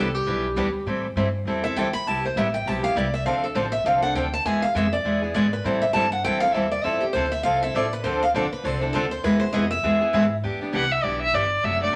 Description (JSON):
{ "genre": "acoustic string swing (jazz manouche)", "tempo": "200 BPM", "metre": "4/4", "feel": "swing 58% on 8ths", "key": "A minor", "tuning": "A4 = 440 Hz", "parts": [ { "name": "picked steel-string acoustic guitar", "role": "second line", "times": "0.0-10.3 s", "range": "E4 to B5", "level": "-26 LUFS", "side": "equal", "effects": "none" }, { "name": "picked steel-string acoustic guitar", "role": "accompaniment", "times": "0.0-12.0 s", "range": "C3 to A4", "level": "-27 LUFS", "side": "equal", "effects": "none" }, { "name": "picked steel-string acoustic guitar", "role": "accompaniment", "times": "0.0-0.7, 5.6-10.2 s", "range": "D3 to B4", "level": "-33 LUFS", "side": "equal", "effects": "none" }, { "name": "upright bass", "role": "bass", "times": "0.0-11.9 s", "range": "F#1 to A2", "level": "-34 LUFS", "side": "equal", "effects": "none" }, { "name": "warm violin", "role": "melody", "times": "10.8-12.0 s", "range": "D5 to F#5", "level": "-24 LUFS", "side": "equal", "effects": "none" } ], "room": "wet studio reverb, RT60 0.7 s", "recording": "none", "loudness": "-23 LUFS", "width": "mono", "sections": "0.9-10.4 A section; 10.4-12.0 A section", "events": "steel-string acoustic guitar solo 0.0-10.4; violin solo 10.4-12.0", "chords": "0.0 Em7; 0.9 Am7; 2.1 Cmaj7; 3.3 Dm7; 4.5 E; 5.6 Am7; 6.8 Fmaj7; 8.0 Dm7; 9.2 E; 10.4 Em7" }